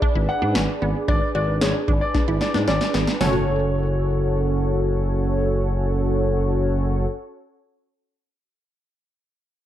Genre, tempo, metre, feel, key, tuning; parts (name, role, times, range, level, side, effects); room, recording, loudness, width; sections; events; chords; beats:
synth-pop; 113 BPM; 4/4; straight; F# minor; A4 = 440 Hz
funky polysynth comp; accompaniment; 0.0-7.1 s; C#4 to D5; -25 LUFS; equal; chorus
resonant blip pluck; arpeggios; 0.0-7.2 s; F#3 to G#4; -28 LUFS; equal; phaser, tape echo
electro analog drum machine; drums; 0.0-3.3 s; hi-hat, kick drum, snare drum, toms; -23 LUFS; equal; overdrive
smooth gliding synth bass; bass; 0.2-7.1 s; F#1 to G#2; -23 LUFS; equal
clear concert grand piano; second line; 0.3-4.8 s; C#5 to F#5; -28 LUFS; left 2 dB; tape echo
light reverb, digital ambience; dark, warm production; -19 LUFS; side -11 dB against mid
0.0-3.2 A section; 3.2-7.5 B section
drum fill 2.1-3.2
0.0 G#dim; 3.2 F#m
0.02 0.55 | 1.08 1.61 2.15 2.68 | 3.21 3.74 4.27 4.80 | 5.33 5.86 6.39 6.92